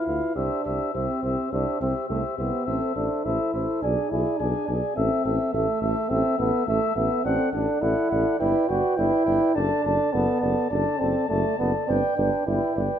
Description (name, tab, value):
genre	classical, brass quintet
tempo	104 BPM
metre	4/4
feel	rubato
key	G major from 7.2 s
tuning	A4 = 441 Hz
part	warm trumpet	melody	0.0-13.0 s	E5 to A5	-30 LUFS	left 6 dB	none
part	dark flugelhorn	second line	0.0-13.0 s	B4 to E5	-30 LUFS	right 7 dB	none
part	clear French horn	accompaniment	0.0-13.0 s	F4 to B4	-31 LUFS	left 4 dB	none
part	warm trombone	accompaniment	0.0-12.8 s	A3 to F#4	-26 LUFS	right 1 dB	none
part	mellow bass trombone	bass	0.1-12.9 s	F#1 to D2	-28 LUFS	equal	none
room	moderate large studio reverb, RT60 1.3 s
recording	minimal, uncompressed stereo recording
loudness	-22 LUFS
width	side -9 dB against mid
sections	0.0-13.0 A section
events	none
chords	0.4 C; 2.7 Am; 3.8 G#dim/B; 5.0 Am; 7.2 D/A; 8.4 G; 9.6 D/F#; 11.9 G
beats	| 0.36 0.94 1.52 2.09 | 2.67 3.25 3.82 4.39 | 4.96 5.53 6.10 6.67 | 7.25 7.82 8.40 8.98 | 9.56 10.13 10.71 11.30 | 11.88 12.47